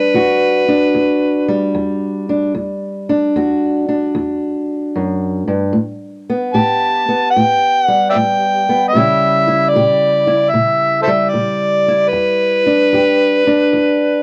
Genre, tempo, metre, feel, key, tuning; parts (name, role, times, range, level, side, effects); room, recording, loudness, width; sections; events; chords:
acoustic country blues, solo or duo; 75 BPM; 4/4; swing 66% on 8ths; E minor; A4 = 441 Hz
overdriven harmonica; melody; 0.0-1.7, 6.5-14.2 s; A4 to A5; -16 LUFS; equal
fingerpicked steel-string acoustic guitar; accompaniment; 0.0-14.2 s; E2 to G4; -18 LUFS; equal
small room ambience; dry, close 1970s-style studio recording; -15 LUFS; mono
0.0-14.2 A section
0.0 Em9; 5.7 Asus2; 8.9 A#dim7; 12.1 Em7